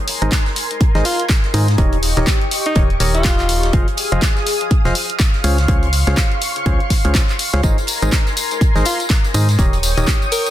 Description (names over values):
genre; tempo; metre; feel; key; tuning
piano house; 123 BPM; 4/4; swing 59% on 16ths; Ab major; A4 = 440 Hz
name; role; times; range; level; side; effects
analog string pad; sustained chords; 0.0-10.5 s; G4 to Eb6; -24 LUFS; left 1 dB; ensemble chorus, sidechain pumping
punchy analog drum machine; drums; 0.1-10.5 s; handclaps, hi-hat, tambourine; -22 LUFS; left 1 dB; none
warm soul drum kit; drums; 0.1-10.5 s; hi-hat, snare drum; -32 LUFS; right 4 dB; none
percussive organ stab; riff; 0.2-10.1 s; Db3 to F5; -23 LUFS; equal; chorus, sidechain pumping, ping-pong delay
organ-like FM bass; bass; 0.2-10.0 s; Eb1 to Ab2; -17 LUFS; equal; sidechain pumping
electronic kick drum; drums; 0.3-10.2 s; none; -16 LUFS; equal; none
clear alto saxophone; melody; 1.1-3.8, 8.9-10.5 s; Eb4 to Bb4; -23 LUFS; equal; ping-pong delay
room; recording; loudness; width
little or no reverb; dense, heavily limited modern master; -14 LUFS; side -13 dB against mid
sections
0.0-10.5 A section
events
none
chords
0.0 Abadd9; 1.8 Eb7; 3.7 Fm7; 5.4 Dbmaj7; 7.6 Abadd9; 9.6 Eb7